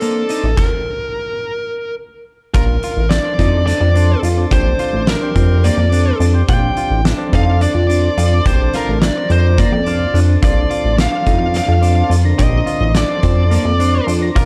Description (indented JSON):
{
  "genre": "progressive instrumental, band music in an uneven meter",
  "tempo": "213 BPM (eighths)",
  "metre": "7/8",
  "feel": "straight",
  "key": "Bb major",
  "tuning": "A4 = 441 Hz",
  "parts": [
    { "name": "fuzz lead guitar", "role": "melody", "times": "0.0-14.5 s", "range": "A4 to G5", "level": "-22 LUFS", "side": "equal", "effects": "distortion, tape echo" },
    { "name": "tonewheel organ", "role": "accompaniment", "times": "0.0-14.5 s", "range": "D3 to C5", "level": "-26 LUFS", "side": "equal", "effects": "slow rotary speaker" },
    { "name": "clean electric guitar", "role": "arpeggios", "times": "0.0-14.5 s", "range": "Bb3 to G4", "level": "-27 LUFS", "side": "equal", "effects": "none" },
    { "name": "oversized low-tuned drum kit", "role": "drums", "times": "0.0-14.5 s", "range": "crash cymbal, hi-hat, kick drum, snare drum", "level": "-22 LUFS", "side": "equal", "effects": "none" },
    { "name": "chorused synth bass", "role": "bass", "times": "0.4-14.5 s", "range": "A1 to F2", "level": "-16 LUFS", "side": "equal", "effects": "none" }
  ],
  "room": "light reverb",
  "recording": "dark, warm production",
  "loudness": "-15 LUFS",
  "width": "mono",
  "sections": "0.0-2.5 A section; 2.5-14.5 B section",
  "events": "stop 0.6-2.5",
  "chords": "0.0 Bbmaj7",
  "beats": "0.01 0.29 | 0.57 0.85 1.14 1.42 1.70 1.98 2.26 | 2.54 2.82 3.11 3.39 3.67 3.95 4.23 | 4.51 4.79 5.08 5.36 5.64 5.92 6.20 | 6.48 6.76 7.04 7.33 7.61 7.89 8.17 | 8.45 8.73 9.02 9.30 9.58 9.86 10.14 | 10.42 10.71 10.99 11.27 11.55 11.83 12.11 | 12.39 12.68 12.96 13.24 13.52 13.80 14.08 | 14.37"
}